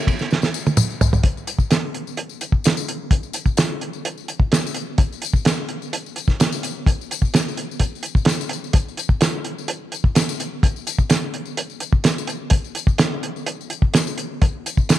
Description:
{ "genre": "rock", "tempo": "128 BPM", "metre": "4/4", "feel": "straight", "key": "none", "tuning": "none", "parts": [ { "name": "cloth-damped thuddy drum kit", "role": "drums", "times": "0.1-15.0 s", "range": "hi-hat, kick drum, ride cymbal, snare drum, toms", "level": "-18 LUFS", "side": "equal", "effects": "none" }, { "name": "tambourine", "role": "percussion", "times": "0.1-15.0 s", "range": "none", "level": "-30 LUFS", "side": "left 17 dB", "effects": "none" } ], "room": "moderate plate reverb, RT60 2.1 s", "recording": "1960s-style stereo", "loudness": "-18 LUFS", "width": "side -13 dB against mid", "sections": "0.0-1.2 A section; 1.2-15.0 B section", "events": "drum fill 0.3-1.2", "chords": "none" }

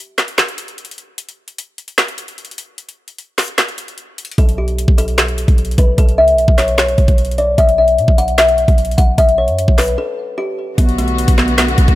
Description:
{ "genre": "hip hop, trap", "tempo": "150 BPM", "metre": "4/4", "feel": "half-time", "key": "unclear", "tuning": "A4 = 437 Hz", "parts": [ { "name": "trap drum kit", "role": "drums", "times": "0.2-12.0 s", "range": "handclaps, hi-hat, kick drum, snare drum", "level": "-14 LUFS", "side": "equal", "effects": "none" }, { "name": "kalimba", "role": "melody", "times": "4.4-12.0 s", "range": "A3 to F#5", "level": "-15 LUFS", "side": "left 1 dB", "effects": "low-pass filter, ping-pong delay" }, { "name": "warm 808-style bass", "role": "bass", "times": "4.4-12.0 s", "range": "B1 to B2", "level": "-17 LUFS", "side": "equal", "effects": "none" }, { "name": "warm symphonic string section", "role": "sustained chords", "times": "10.8-12.0 s", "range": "D3 to F#4", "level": "-19 LUFS", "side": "left 2 dB", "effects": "none" } ], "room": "small room ambience", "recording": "none", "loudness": "-12 LUFS", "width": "side -16 dB against mid", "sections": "0.0-10.8 A section; 10.8-12.0 B section", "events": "break 0.0-4.4, 10.0-10.8; filter sweep on kalimba 0.0-4.4", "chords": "0.0 N.C.; 4.4 A/B; 7.6 E5/B; 10.8 Bm" }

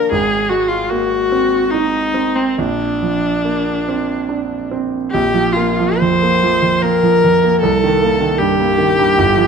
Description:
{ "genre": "classical, impressionist duo for viola and grand piano", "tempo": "72 BPM", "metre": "3/4", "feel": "uneven beats, rubato", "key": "Bb major", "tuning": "A4 = 440 Hz", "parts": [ { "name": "clear viola", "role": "melody", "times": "0.0-9.5 s", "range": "C4 to C5", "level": "-15 LUFS", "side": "left 3 dB", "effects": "none" }, { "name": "clear concert grand piano", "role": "accompaniment", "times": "0.0-9.5 s", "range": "G1 to F4", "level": "-17 LUFS", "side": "right 4 dB", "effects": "none" } ], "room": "moderate recital hall reverb, RT60 1.6 s", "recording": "minimal, uncompressed stereo recording", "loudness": "-13 LUFS", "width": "side -6 dB against mid", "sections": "0.0-5.1 A section; 5.1-9.5 B section", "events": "none", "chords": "0.1 Ab9; 2.6 Bbadd9; 5.1 Bbsus2; 7.6 Cm7" }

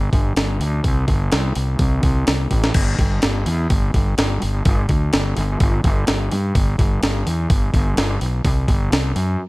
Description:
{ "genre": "classic rock", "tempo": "126 BPM", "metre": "4/4", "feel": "straight", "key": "G major", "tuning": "A4 = 442 Hz", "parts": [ { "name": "fuzz fingered electric bass", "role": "bass", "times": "0.0-9.4 s", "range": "G1 to G2", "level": "-19 LUFS", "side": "equal", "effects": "overdrive" }, { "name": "breakbeat sampler-style drum kit", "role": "drums", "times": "0.1-9.3 s", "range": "crash cymbal, hi-hat, kick drum, snare drum", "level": "-19 LUFS", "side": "equal", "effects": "none" } ], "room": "little or no reverb", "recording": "none", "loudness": "-16 LUFS", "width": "side -22 dB against mid", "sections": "0.0-9.5 A section", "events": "drum fill 2.5", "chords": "none" }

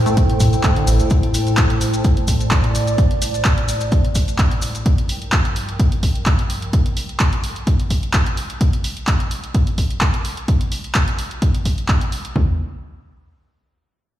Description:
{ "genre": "acid house", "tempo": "128 BPM", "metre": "4/4", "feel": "swing 54% on 16ths", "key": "unclear", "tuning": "A4 = 440 Hz", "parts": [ { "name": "warm analog pad", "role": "sustained chords", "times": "0.0-8.6 s", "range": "G2 to A5", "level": "-24 LUFS", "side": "equal", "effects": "chorus, sidechain pumping" }, { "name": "warbly tape-like pad", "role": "texture", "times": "0.0-4.9 s", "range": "E4 to G5", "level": "-24 LUFS", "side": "equal", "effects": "chorus, built-in reverb, sidechain pumping" }, { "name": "liquid acid bass", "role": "riff", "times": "0.1-1.0 s", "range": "A1 to A3", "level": "-19 LUFS", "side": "equal", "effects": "phaser, vintage 12-bit sampler grit, sidechain pumping, tape echo" }, { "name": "punchy analog drum machine", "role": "drums", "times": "0.1-12.3 s", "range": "handclaps, hi-hat", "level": "-24 LUFS", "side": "equal", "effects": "none" }, { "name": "maracas", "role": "percussion", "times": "0.1-4.8 s", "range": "none", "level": "-30 LUFS", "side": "left 4 dB", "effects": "none" }, { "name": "punchy analog drum machine", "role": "drums", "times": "0.2-12.5 s", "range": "kick drum, toms", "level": "-17 LUFS", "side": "equal", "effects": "none" } ], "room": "light reverb", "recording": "played on a big sound system in a bare room, large studio reverb", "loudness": "-16 LUFS", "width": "side -13 dB against mid", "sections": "0.0-12.4 A section; 12.4-14.2 B section", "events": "filter sweep on acid bass 0.0-1.1; filter sweep on analog synth pad 0.0-8.6", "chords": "0.0 Am7; 4.9 Gm7; 12.4 N.C." }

